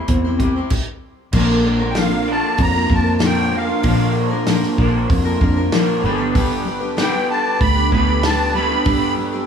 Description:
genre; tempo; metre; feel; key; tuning
folk rock and heartland rock; 96 BPM; 4/4; straight; unclear; A4 = 440 Hz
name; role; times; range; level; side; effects
picked steel-string acoustic guitar; accompaniment; 0.0-9.5 s; Bb2 to C5; -22 LUFS; left 5 dB; none
electric guitar through a small old amp; riff; 0.0-9.5 s; G2 to Bb4; -21 LUFS; right 2 dB; analog chorus
fingered electric bass; bass; 0.1-9.5 s; G1 to Bb2; -20 LUFS; equal; none
natural country drum kit; drums; 0.1-9.0 s; crash cymbal, hi-hat, kick drum, snare drum; -22 LUFS; equal; none
musette accordion; melody; 1.9-9.1 s; F5 to B5; -21 LUFS; right 1 dB; none
accordion; sustained chords; 6.3-9.5 s; B4 to E6; -30 LUFS; right 2 dB; light tremolo tuning
room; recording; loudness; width
light reverb; small room ambience; -15 LUFS; side -7 dB against mid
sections
0.0-1.3 A section; 1.3-9.5 B section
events
stop 0.7-1.3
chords
0.0 Am7; 1.3 Bb; 6.0 G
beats
0.08 0.71 | 1.34 1.96 2.59 3.22 | 3.85 4.47 5.10 5.73 | 6.36 6.98 7.61 8.24 | 8.86

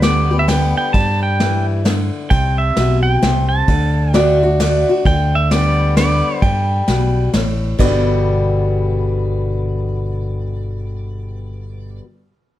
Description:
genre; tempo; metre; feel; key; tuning
honky-tonk and classic country; 131 BPM; 3/4; swing 64% on 8ths; G major; A4 = 442 Hz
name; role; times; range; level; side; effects
pedal steel guitar; melody; 0.0-7.3 s; D5 to A5; -20 LUFS; right 2 dB; none
picked swing-style acoustic guitar; accompaniment; 0.0-12.0 s; G2 to G4; -21 LUFS; left 4 dB; none
fingered electric bass; bass; 0.0-12.0 s; G1 to G2; -18 LUFS; equal; none
soft brush drum kit; drums; 0.0-7.9 s; crash cymbal, kick drum, ride cymbal, snare drum; -20 LUFS; equal; none
lap resonator guitar; second line; 4.1-5.0, 7.8-12.0 s; D5; -19 LUFS; right 4 dB; none
room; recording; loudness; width
moderate studio reverb, RT60 0.8 s; dark, warm production; -14 LUFS; side -13 dB against mid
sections
0.0-7.8 A section; 7.8-10.5 B section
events
none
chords
0.0 G/D; 2.3 C; 3.7 D; 5.1 G/D; 7.8 G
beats
0.03 0.49 | 0.94 1.40 1.86 | 2.31 2.77 3.23 | 3.68 4.14 4.60 | 5.05 5.51 5.97 | 6.42 6.88 7.34 | 7.79 8.25 8.71 | 9.16 9.62 10.07

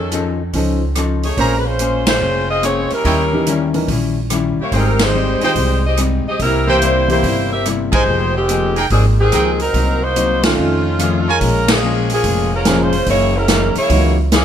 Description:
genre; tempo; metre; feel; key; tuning
jazz, big band swing; 144 BPM; 4/4; swing 66% on 8ths; F minor, Bb minor from 11.4 s; A4 = 440 Hz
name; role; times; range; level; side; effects
warm saxophone section; melody; 0.0-14.4 s; Eb3 to E5; -17 LUFS; equal; none
upright bass; bass; 0.0-14.4 s; F1 to F2; -19 LUFS; right 1 dB; none
archtop guitar, miked and amplified; accompaniment; 0.1-14.4 s; F2 to C5; -21 LUFS; left 5 dB; none
swinging big-band drum kit; drums; 0.1-14.4 s; hi-hat, kick drum, ride cymbal, rim click, snare drum; -20 LUFS; right 1 dB; none
warm concert grand piano; accompaniment; 0.5-7.2, 10.4-14.2 s; Eb3 to Bb4; -22 LUFS; right 2 dB; none
bright trumpet section; stabs; 1.4-11.4 s; Eb4 to Bb5; -21 LUFS; right 3 dB; none
room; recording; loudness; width
light reverb; none; -13 LUFS; side -9 dB against mid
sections
0.0-11.4 A section; 11.4-14.4 B section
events
band accent 2.0, 4.9, 7.9, 10.4, 11.6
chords
0.0 F7alt; 1.4 Bbm9; 3.0 Eb7b9; 4.7 Abmaj7; 6.4 C7; 8.1 Fm11; 9.7 Cm7b5; 10.6 F7alt; 11.4 Bbm7; 13.1 Gb13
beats
0.12 0.54 0.96 | 1.38 1.79 2.21 2.63 | 3.05 3.47 3.89 4.30 | 4.72 5.14 5.56 5.98 | 6.40 6.82 7.23 7.65 | 8.07 8.49 8.90 9.32 | 9.74 10.16 10.57 10.99 | 11.41 11.82 12.24 12.65 | 13.07 13.49 13.90 14.32

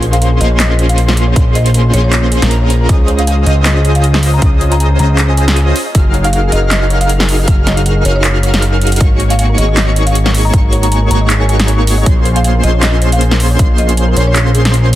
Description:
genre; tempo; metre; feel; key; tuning
future bass; 157 BPM; 4/4; swing 55% on 16ths, half-time; Bb minor; A4 = 442 Hz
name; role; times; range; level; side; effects
airy dreamy lead; arpeggios; 0.0-15.0 s; Bb5 to F6; -24 LUFS; left 1 dB; chorus, sidechain pumping
thumb-piano-like synth pluck; arpeggios; 0.0-15.0 s; Ab4 to Bb5; -28 LUFS; left 2 dB; none
soft supersaw; riff; 0.0-15.0 s; Bb3 to F5; -17 LUFS; right 1 dB; sidechain pumping, digital delay
fat analog bass; bass; 0.0-15.0 s; Gb1 to Db2; -11 LUFS; equal; sidechain pumping
big-room dance drum kit; drums; 0.0-15.0 s; handclaps, hi-hat, snare drum; -17 LUFS; equal; overdrive
buzzing marimba with medium mallets; melody; 0.1-14.4 s; Db5 to Bb5; -22 LUFS; left 1 dB; sidechain pumping, tape echo
electronic kick drum; drums; 1.4-13.7 s; none; -11 LUFS; equal; overdrive
room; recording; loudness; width
little or no reverb; dense, heavily limited modern master; -9 LUFS; side -14 dB against mid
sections
0.0-15.0 A section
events
drum fill 8.8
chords
0.0 Bbm9; 2.9 Dbmaj9; 5.8 Gbmaj13; 9.0 Ab9sus4; 12.1 Bbm9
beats
0.22 0.60 0.98 | 1.36 1.75 2.13 2.51 | 2.89 3.27 3.66 4.04 | 4.42 4.80 5.18 5.57 | 5.95 6.33 6.71 7.10 | 7.48 7.86 8.24 8.62 | 9.01 9.39 9.77 10.15 | 10.54 10.92 11.30 11.68 | 12.06 12.45 12.83 13.21 | 13.59 13.97 14.36 14.74

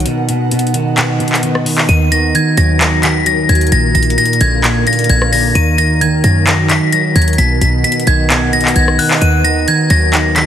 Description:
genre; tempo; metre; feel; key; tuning
hip hop, trap; 131 BPM; 4/4; half-time; Eb harmonic minor; A4 = 440 Hz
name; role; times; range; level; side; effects
electric guitar at the edge of break-up; accompaniment; 0.0-10.5 s; Bb2 to Gb3; -16 LUFS; right 1 dB; none
ethereal airy pad; sustained chords; 0.0-10.5 s; Eb3 to Gb5; -20 LUFS; equal; ensemble chorus, built-in reverb
short 808-style bass; bass; 0.0-10.5 s; Bb1 to Gb2; -14 LUFS; equal; none
trap drum kit; drums; 0.0-10.5 s; handclaps, hi-hat, rim click; -17 LUFS; left 1 dB; none
metallic FM bell; melody; 1.9-10.5 s; F#6 to Eb7; -15 LUFS; left 2 dB; chorus, phaser, tape echo
room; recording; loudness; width
light reverb; dense, heavily limited modern master, vinyl crackle; -10 LUFS; side -10 dB against mid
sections
0.0-1.9 A section; 1.9-10.5 B section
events
break 0.1-1.9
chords
0.1 B; 1.9 Ebm; 3.7 Bb; 5.6 Ebm; 7.4 B; 9.2 Ebm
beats
| 0.06 0.52 0.97 1.43 | 1.89 2.35 2.81 3.26 | 3.72 4.18 4.64 5.09 | 5.55 6.01 6.47 6.93 | 7.38 7.84 8.30 8.76 | 9.22 9.68 10.13

